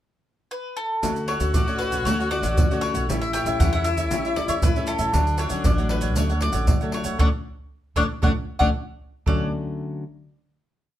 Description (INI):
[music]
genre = samba and choro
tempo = 117 BPM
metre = 4/4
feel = straight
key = D major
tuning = A4 = 444 Hz
[part]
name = bowl-back mandolin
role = melody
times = 0.5-9.5 s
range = A4 to G5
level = -28 LUFS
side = left 1 dB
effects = none
[part]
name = breathy tenor saxophone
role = second line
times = 1.0-9.5 s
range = D4 to F#4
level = -29 LUFS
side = left 3 dB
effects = none
[part]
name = cavaquinho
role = accompaniment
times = 1.0-9.5 s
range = D4 to F#5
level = -32 LUFS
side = right 4 dB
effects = none
[part]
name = nylon-string guitar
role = accompaniment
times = 1.0-10.0 s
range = A2 to F#4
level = -30 LUFS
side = left 3 dB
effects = none
[part]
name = upright bass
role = bass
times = 1.0-9.5 s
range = A1 to D3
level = -26 LUFS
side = equal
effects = none
[part]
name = maracas, surdo and pandeiro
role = percussion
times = 1.0-9.4 s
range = none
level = -24 LUFS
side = right 1 dB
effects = none
[sound]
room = moderate studio reverb, RT60 0.8 s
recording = minimal, uncompressed stereo recording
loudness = -20 LUFS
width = side -12 dB against mid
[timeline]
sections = 0.0-1.0 pickup bar; 1.0-9.3 A section; 9.3-11.0 final chord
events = band accent 7.2-9.3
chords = 0.0 N.C.; 1.0 Dmaj7; 3.1 A7; 5.1 Dmaj7